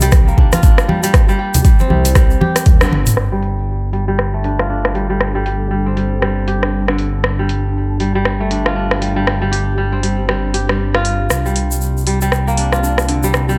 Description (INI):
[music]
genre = afro house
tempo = 118 BPM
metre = 4/4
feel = swing 60% on 16ths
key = G minor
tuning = A4 = 438 Hz
[part]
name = kora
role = arpeggios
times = 0.0-13.6 s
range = D3 to G4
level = -22 LUFS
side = equal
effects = sidechain pumping, low-pass filter, delay
[part]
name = dark detuned saw bass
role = bass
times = 0.0-13.6 s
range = G1 to Eb2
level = -21 LUFS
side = equal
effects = sidechain pumping
[part]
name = afro-pop drum kit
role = drums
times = 0.0-13.5 s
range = hi-hat, rim click, toms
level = -22 LUFS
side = equal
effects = low-pass filter on snare, low-pass filter on hats, low-pass filter on toms
[part]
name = congas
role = percussion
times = 0.0-3.0 s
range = none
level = -20 LUFS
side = equal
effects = none
[part]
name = egg shaker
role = percussion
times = 0.0-3.1, 11.3-13.6 s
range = none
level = -28 LUFS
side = equal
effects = none
[part]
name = electronic kick drum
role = drums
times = 0.1-2.8 s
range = none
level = -12 LUFS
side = equal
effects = none
[part]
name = ethereal airy pad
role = sustained chords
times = 3.7-13.6 s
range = G3 to A5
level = -28 LUFS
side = equal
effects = ensemble chorus, built-in reverb, sidechain pumping
[sound]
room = light reverb, studio reverb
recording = none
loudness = -15 LUFS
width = mono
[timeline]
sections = 0.0-3.2 A section; 3.2-13.6 B section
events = drum fill 2.7-3.2; band accent 2.8; filter sweep on drum 3.2-13.6; filter sweep on kora 3.2-13.6; filter sweep on ambient pad 3.2-13.6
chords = 0.0 Csus2; 3.2 Gsus2; 11.3 Csus2